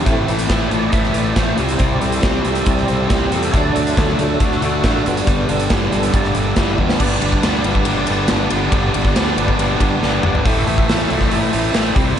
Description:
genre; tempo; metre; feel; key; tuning
classic rock; 139 BPM; 4/4; straight; unclear; A4 = 440 Hz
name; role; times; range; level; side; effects
tonewheel organ; sustained chords; 0.0-12.2 s; C3 to E5; -23 LUFS; equal; slow rotary speaker, overdrive, chorus vibrato
distorted electric guitar; riff; 0.0-12.2 s; G2 to D4; -22 LUFS; right 8 dB; overdrive, slapback echo
sludgy distorted guitar; riff; 0.0-12.2 s; G2 to D4; -21 LUFS; left 7 dB; overdrive
fuzz fingered electric bass; bass; 0.0-12.1 s; G1 to E2; -23 LUFS; equal; overdrive
big rock drum kit; drums; 0.1-12.1 s; crash cymbal, hi-hat, kick drum, ride cymbal, snare drum, toms; -18 LUFS; equal; none
room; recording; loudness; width
moderate recital hall reverb, RT60 1.4 s, small room ambience; big arena sound, nothing above 10.7 kHz; -14 LUFS; side -9 dB against mid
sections
0.0-7.0 A section; 7.0-10.5 B section; 10.5-12.2 C section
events
tonewheel organ solo 0.0-7.0; drum fill 6.8, 10.0-10.5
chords
0.1 Am; 1.6 C; 3.5 D; 5.1 G; 10.5 Am

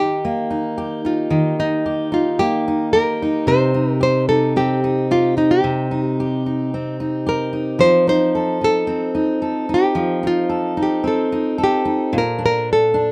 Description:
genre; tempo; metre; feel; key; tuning
pop; 111 BPM; 4/4; straight; unclear; A4 = 440 Hz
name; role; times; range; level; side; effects
nylon-string guitar; melody; 0.0-13.1 s; Eb4 to C5; -21 LUFS; equal; none
fingerpicked steel-string acoustic guitar; accompaniment; 0.0-13.1 s; Bb2 to A4; -22 LUFS; equal; none
room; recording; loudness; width
light reverb; none; -19 LUFS; mono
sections
0.0-13.1 A section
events
none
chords
0.0 Ebadd9; 3.5 Cm; 7.8 F7; 12.1 Bbmaj7

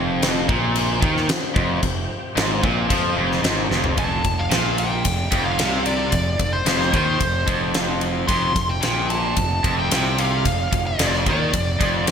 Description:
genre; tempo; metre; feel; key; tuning
hard rock; 111 BPM; 4/4; straight; unclear; A4 = 441 Hz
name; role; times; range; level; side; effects
overdriven tonewheel organ; sustained chords; 0.0-3.9 s; F3 to G4; -34 LUFS; left 1 dB; none
cranked stack guitar; riff; 0.0-12.1 s; F2 to F3; -24 LUFS; right 7 dB; overdrive
overdriven electric guitar; riff; 0.0-12.1 s; F2 to F3; -26 LUFS; left 11 dB; none
fuzz fingered electric bass; bass; 0.0-12.1 s; F1 to F2; -27 LUFS; equal; overdrive
huge arena drum kit; drums; 0.2-12.1 s; crash cymbal, kick drum, ride cymbal, snare drum, toms; -23 LUFS; equal; gated reverb
nasal lead guitar with a parked wah; melody; 4.0-12.1 s; C5 to C6; -24 LUFS; equal; overdrive
room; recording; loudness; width
moderate plate reverb, RT60 2.5 s; bright 1980s-style digital production; -18 LUFS; side -7 dB against mid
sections
0.0-4.0 A section; 4.0-12.1 B section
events
drum fill 3.7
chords
0.0 F5

